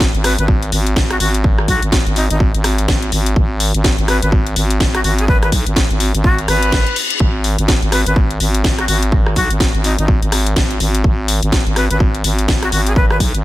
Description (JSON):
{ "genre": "bass house", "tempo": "125 BPM", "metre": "4/4", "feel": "swing 60% on 16ths", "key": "G# minor", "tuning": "A4 = 440 Hz", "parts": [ { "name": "growling FM bass", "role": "bass", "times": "0.0-13.4 s", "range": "G#1 to B1", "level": "-17 LUFS", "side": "equal", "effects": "overdrive, sidechain pumping" }, { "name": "electronic kick drum", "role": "drums", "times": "0.0-13.3 s", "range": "none", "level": "-15 LUFS", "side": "equal", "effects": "none" }, { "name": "house drum kit", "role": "drums", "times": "0.0-13.4 s", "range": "hi-hat, rim click, snare drum", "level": "-20 LUFS", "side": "left 1 dB", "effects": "none" }, { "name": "breathy bright jazz flute", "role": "melody", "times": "0.2-13.2 s", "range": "D#4 to B4", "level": "-21 LUFS", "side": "left 1 dB", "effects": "digital delay" }, { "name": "reverse cymbal", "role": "sound effects", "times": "6.5-7.2 s", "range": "none", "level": "-23 LUFS", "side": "left 6 dB", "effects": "none" } ], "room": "little or no reverb", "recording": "none", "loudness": "-12 LUFS", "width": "side -16 dB against mid", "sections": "0.0-13.4 A section", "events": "reverse cymbal 6.5-7.2", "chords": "none" }